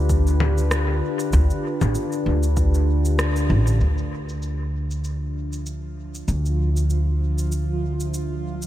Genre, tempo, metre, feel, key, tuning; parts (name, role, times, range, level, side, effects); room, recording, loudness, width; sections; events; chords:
ambient dub; 97 BPM; 4/4; swing 56% on 16ths; D dorian; A4 = 440 Hz
warbly tape-like pad; sustained chords; 0.0-8.7 s; D3 to E5; -28 LUFS; equal; chorus, built-in reverb, vintage 12-bit sampler grit
upright bass; bass; 0.0-8.7 s; A1 to D2; -21 LUFS; equal
electronic cabasa, congas and rim click; drums; 0.1-8.7 s; -30 LUFS; left 2 dB; low-pass filter on perc, low-pass filter on snare, low-pass filter on room, dub echo
electronic kick drum; drums; 0.1-2.7 s; -24 LUFS; equal
bubbling stepped-filter texture; texture; 5.5-8.7 s; F3 to F4; -33 LUFS; right 2 dB; chorus, built-in reverb
digital ambience; -20 LUFS; side -13 dB against mid
0.0-3.8 A section; 3.8-8.7 B section
band accent 3.2-3.5; filter sweep on drum 3.8-8.7; filter sweep on ambient pad 3.8-8.7
0.0 Fsus2; 3.8 Dm7